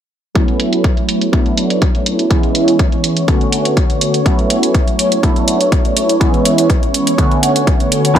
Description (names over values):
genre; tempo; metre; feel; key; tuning
filtered disco house; 123 BPM; 4/4; straight; A major; A4 = 442 Hz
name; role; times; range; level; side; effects
funky polysynth comp; accompaniment; 0.3-8.2 s; D3 to F#4; -15 LUFS; right 1 dB; chorus, phaser, sidechain pumping, low-pass filter
string machine, full ensemble; sustained chords; 0.4-8.2 s; C#5 to C#6; -21 LUFS; left 1 dB; ensemble chorus, vintage 12-bit sampler grit, sidechain pumping, low-pass filter
electronic hi-hat; drums; 0.4-8.2 s; none; -19 LUFS; right 2 dB; overdrive, sidechain pumping on hats, low-pass filter on hats, low-pass filter on room
electronic kick drum; drums; 0.4-8.2 s; none; -14 LUFS; equal; overdrive
electric guitar with an envelope filter; riff; 8.2 s; C#4 to F#4; -10 LUFS; left 1 dB; spring reverb, sidechain pumping, low-pass filter
gritty slap bass; bass; 8.2 s; A1; -16 LUFS; left 1 dB; overdrive, sidechain pumping, low-pass filter
room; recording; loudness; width
light reverb; none; -11 LUFS; side -10 dB against mid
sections
0.4-8.2 A section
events
filter sweep 0.4-8.2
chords
0.4 A69; 1.3 D6; 2.3 C#m7; 3.3 Bm7; 4.3 A69; 5.2 D6; 6.2 C#m7; 7.2 Bm7